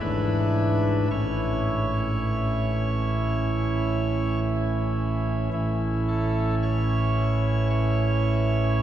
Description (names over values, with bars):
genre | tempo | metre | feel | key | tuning
classical, chorale-style piece for pipe organ | 54 BPM | 4/4 | rubato | A major | A4 = 440 Hz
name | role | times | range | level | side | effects
pipe organ, cornet | solo | 0.0-8.8 s | G#1 to C#5 | -22 LUFS | right 1 dB | none
room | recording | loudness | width
wet cathedral reverb, RT60 5.9 s | heard from further back in the room | -22 LUFS | side -11 dB against mid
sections
0.0-5.5 A section; 5.5-8.8 A section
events
none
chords
0.0 E7/G#; 1.1 A